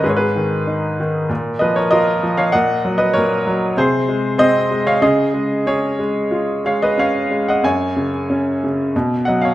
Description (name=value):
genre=classical, lyrical solo piano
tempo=95 BPM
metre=4/4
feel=uneven beats, rubato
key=unclear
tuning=A4 = 440 Hz
part: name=bright baby grand piano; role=solo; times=0.0-9.5 s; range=F#2 to G#5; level=-15 LUFS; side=equal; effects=none
room=moderate recital hall reverb, RT60 1.8 s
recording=dark, warm production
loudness=-15 LUFS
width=side -15 dB against mid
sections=0.0-9.5 A section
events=none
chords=0.0 G#m; 1.3 A#m; 2.5 D#m/A#; 3.8 G#/B#; 5.0 C#; 7.6 F#5; 8.9 B